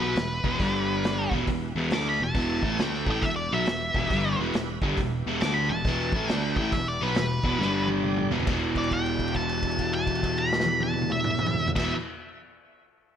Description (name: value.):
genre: blues rock power trio and southern rock.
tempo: 137 BPM.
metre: 4/4.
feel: swing 64% on 8ths.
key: E minor.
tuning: A4 = 436 Hz.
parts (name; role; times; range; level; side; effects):
octave-fuzz lead guitar; melody; 0.0-11.9 s; B4 to D6; -29 LUFS; equal; distortion.
bright tonewheel organ; sustained chords; 0.0-11.9 s; G3 to D5; -39 LUFS; right 6 dB; none.
crunchy overdriven guitar; riff; 0.0-12.0 s; E2 to D4; -27 LUFS; left 1 dB; spring reverb.
fingered electric bass; bass; 0.0-11.9 s; E1 to D2; -33 LUFS; right 1 dB; none.
vintage drum kit; drums; 0.2-11.9 s; crash cymbal, hi-hat, kick drum, snare drum, toms; -30 LUFS; equal; none.
room: moderate large studio reverb, RT60 1.1 s.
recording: none.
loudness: -24 LUFS.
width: side -9 dB against mid.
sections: 0.0-8.5 A section; 8.5-12.0 B section.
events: drum fill 7.6-8.5; held note 8.5-11.7.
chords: 0.0 Em; 0.6 G5; 1.3 Em; 7.6 G5; 8.3 E5; 8.5 Em7.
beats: 0.17 0.61 1.04 | 1.48 1.92 2.36 2.79 | 3.23 3.67 4.11 4.55 | 4.98 5.42 5.86 6.30 | 6.74 7.17 7.61 8.05 | 8.48 8.92 9.36 9.80 | 10.23 10.67 11.11 11.55.